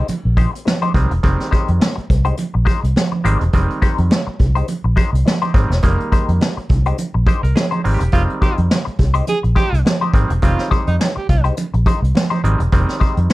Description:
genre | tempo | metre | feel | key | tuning
funk | 104 BPM | 4/4 | swing 56% on 16ths | unclear | A4 = 440 Hz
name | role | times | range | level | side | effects
semi-hollow electric guitar | accompaniment | 0.0-13.3 s | Ab3 to C5 | -23 LUFS | left 6 dB | wah
vintage muted fingered electric bass | bass | 0.1-13.3 s | E1 to F2 | -16 LUFS | equal | none
vintage brush drum kit | drums | 0.1-13.3 s | hi-hat, kick drum, snare drum | -17 LUFS | equal | none
congas | percussion | 0.1-13.3 s | none | -24 LUFS | right 4 dB | none
overdriven clav | stabs | 0.9-13.3 s | Eb3 to C5 | -23 LUFS | right 2 dB | slapback echo
breathy tenor saxophone | second line | 8.1-11.4 s | Eb4 to Ab4 | -22 LUFS | right 3 dB | none
room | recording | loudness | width
light reverb | dark, warm production | -14 LUFS | side -18 dB against mid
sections
0.0-13.3 A section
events
clav fill 7.0-8.1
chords
0.0 Fm9 (rootless)

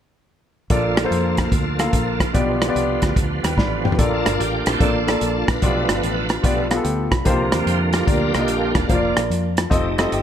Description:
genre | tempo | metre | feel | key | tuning
uptempo gospel | 146 BPM | 4/4 | swing 66% on 8ths | Bb major | A4 = 440 Hz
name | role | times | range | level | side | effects
warm grand piano | accompaniment | 0.7-10.2 s | Bb2 to B5 | -23 LUFS | left 2 dB | none
bright tonewheel organ | sustained chords | 0.7-10.2 s | D3 to C5 | -24 LUFS | right 3 dB | slow rotary speaker, chorus vibrato
fingered electric bass | bass | 0.7-10.2 s | E1 to F2 | -25 LUFS | equal | none
warm soul drum kit | drums | 0.7-10.2 s | hi-hat, kick drum, rim click, snare drum, toms | -21 LUFS | equal | none
dark French horn section | sustained chords | 4.0-10.2 s | F3 to A4 | -32 LUFS | left 2 dB | none
room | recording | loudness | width
light reverb | none | -17 LUFS | side -9 dB against mid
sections
0.7-4.0 A section; 4.0-10.2 B section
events
drum fill 3.6-4.0; tonewheel organ solo 4.0-10.2; grand piano fill 6.4-7.3, 9.7-10.2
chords
0.7 Bbmaj7; 2.3 G7/B; 4.0 Bbmaj7; 5.6 G7; 7.3 C7sus4; 8.9 Bb/F; 9.7 F7

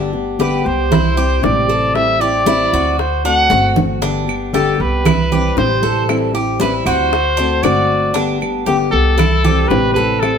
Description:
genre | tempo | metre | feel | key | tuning
latin, Cuban son and guajira | 116 BPM | 4/4 | straight | G major | A4 = 440 Hz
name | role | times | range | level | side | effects
fingerpicked plugged-in steel-string acoustic guitar | accompaniment | 0.0-10.4 s | C3 to G4 | -20 LUFS | left 3 dB | none
Cuban tres | arpeggios | 0.0-10.4 s | D4 to A4 | -21 LUFS | right 2 dB | none
upright bass | bass | 0.0-10.4 s | G1 to D2 | -20 LUFS | equal | none
congas | percussion | 0.1-10.4 s | none | -20 LUFS | right 3 dB | none
warm trumpet | melody | 0.4-10.4 s | G4 to F#5 | -17 LUFS | equal | none
bongos | percussion | 0.4-10.4 s | none | -23 LUFS | left 7 dB | none
claves | percussion | 4.3-10.4 s | none | -27 LUFS | right 4 dB | none
room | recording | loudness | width
moderate stone room reverb, RT60 1.0 s | band playing live in one room | -13 LUFS | side -7 dB against mid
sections
0.0-10.4 A section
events
drum fill 3.5-4.0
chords
0.0 G; 0.9 C; 2.0 Am7; 3.0 D7; 4.0 G; 5.1 C; 6.1 Am7; 7.1 D7; 8.2 G; 9.2 C

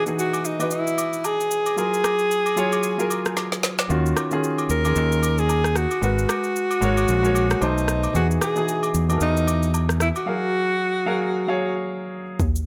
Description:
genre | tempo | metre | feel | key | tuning
amapiano | 113 BPM | 4/4 | swing 58% on 16ths | unclear | A4 = 440 Hz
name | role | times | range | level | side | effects
warm alto saxophone | melody | 0.0-11.8 s | D#4 to Bb4 | -26 LUFS | equal | tape echo
warm grand piano | accompaniment | 0.0-12.4 s | B2 to F5 | -28 LUFS | equal | none
afro-pop drum kit | drums | 0.1-12.7 s | kick drum, rim click, shaker, snare drum | -30 LUFS | equal | none
agogo bells and woodblock | percussion | 0.3-10.3 s | none | -34 LUFS | equal | none
fingered electric bass | bass | 3.9-10.1 s | Ab1 to E2 | -24 LUFS | equal | none
tight log drum bass | bass | 12.4-12.7 s | Eb2 | -24 LUFS | equal | none
room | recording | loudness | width
light reverb, small room ambience | none | -22 LUFS | mono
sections
0.0-12.4 A section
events
drum fill 3.4-3.9; break 10.3-12.4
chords
0.0 Emaj9; 1.8 Gbmaj9; 3.9 Ebm9; 6.0 Abm9; 7.6 B7b9; 8.1 Emaj9; 10.3 Gbmaj9

